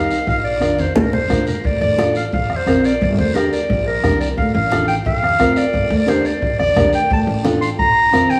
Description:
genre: latin, cumbia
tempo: 176 BPM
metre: 4/4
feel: straight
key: Bb major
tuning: A4 = 441 Hz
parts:
  - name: warm clarinet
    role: melody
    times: 0.0-8.4 s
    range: Bb4 to C6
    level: -20 LUFS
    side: equal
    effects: none
  - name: nylon-string guitar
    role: accompaniment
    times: 0.0-8.4 s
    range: C4 to Bb4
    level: -23 LUFS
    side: equal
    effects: none
  - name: upright bass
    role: bass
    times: 0.0-8.4 s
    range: G1 to D2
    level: -24 LUFS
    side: equal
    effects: none
  - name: guiro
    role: percussion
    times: 0.1-8.4 s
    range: none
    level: -37 LUFS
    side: equal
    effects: none
  - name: bombo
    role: percussion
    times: 0.3-8.3 s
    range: none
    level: -27 LUFS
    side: equal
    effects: none
  - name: congas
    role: percussion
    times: 0.6-8.3 s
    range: none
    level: -25 LUFS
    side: equal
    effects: none
room: wet plate reverb, RT60 3.3 s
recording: heard from further back in the room, studio reverb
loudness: -17 LUFS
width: mono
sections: 0.0-1.6 A section; 1.6-8.4 B section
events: drum fill 0.8-1.6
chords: 0.3 Bb; 1.6 Dm; 2.3 Bbsus2; 3.0 Gm; 4.4 Dm; 5.1 Bbsus2; 5.7 Gm; 7.1 Dm; 7.8 Bbsus2

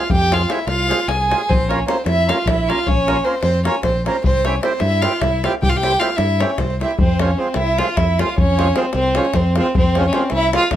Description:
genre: balkan folk, Balkan wedding band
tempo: 305 BPM (eighths)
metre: 7/8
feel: straight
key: unclear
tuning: A4 = 440 Hz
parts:
  - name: rich fiddle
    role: melody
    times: 0.0-10.7 s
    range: C4 to Ab5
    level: -20 LUFS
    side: left 2 dB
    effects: none
  - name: warm violin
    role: second line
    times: 0.0-10.8 s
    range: C4 to F5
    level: -23 LUFS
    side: right 5 dB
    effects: none
  - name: accordion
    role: accompaniment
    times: 0.0-10.6 s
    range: F3 to Bb4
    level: -23 LUFS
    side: right 4 dB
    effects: none
  - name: davul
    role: percussion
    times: 0.0-10.8 s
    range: none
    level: -22 LUFS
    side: left 2 dB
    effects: none
  - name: fingered electric bass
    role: bass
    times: 0.1-10.8 s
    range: Bb1 to G2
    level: -20 LUFS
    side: equal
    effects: none
room: light reverb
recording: none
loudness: -15 LUFS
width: side -11 dB against mid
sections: 0.0-7.0 A section; 7.0-10.8 A section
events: none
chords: 0.0 Fm; 1.5 Bbm; 4.2 C; 7.0 Fm

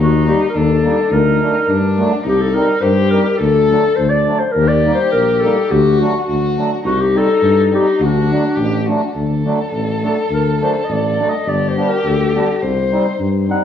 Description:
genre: klezmer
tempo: 104 BPM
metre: 2/4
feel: straight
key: D phrygian dominant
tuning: A4 = 440 Hz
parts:
  - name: dark clarinet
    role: melody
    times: 0.0-13.6 s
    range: D4 to F#5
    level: -16 LUFS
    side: left 1 dB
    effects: none
  - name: dark violin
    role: second line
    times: 0.0-13.5 s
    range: D4 to C5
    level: -21 LUFS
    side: left 5 dB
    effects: none
  - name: mellow tuba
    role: bass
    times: 0.0-13.5 s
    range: G1 to G2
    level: -17 LUFS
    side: left 2 dB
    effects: none
  - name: mellow accordion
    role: accompaniment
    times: 0.3-13.6 s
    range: F#3 to Eb4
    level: -21 LUFS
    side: right 2 dB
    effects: none
room: wet recital hall reverb, RT60 1.4 s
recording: worn, warbling old tape, cassette tape, warbly pitch drift, small room ambience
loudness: -13 LUFS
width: side -9 dB against mid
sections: 0.0-9.2 A section; 9.2-13.6 B section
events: clarinet solo 9.2-13.6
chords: 0.0 Eb; 1.1 D; 2.3 Cm; 3.4 D; 4.6 Eb; 5.7 D; 6.8 Cm; 8.0 D; 11.5 G; 12.6 Cm

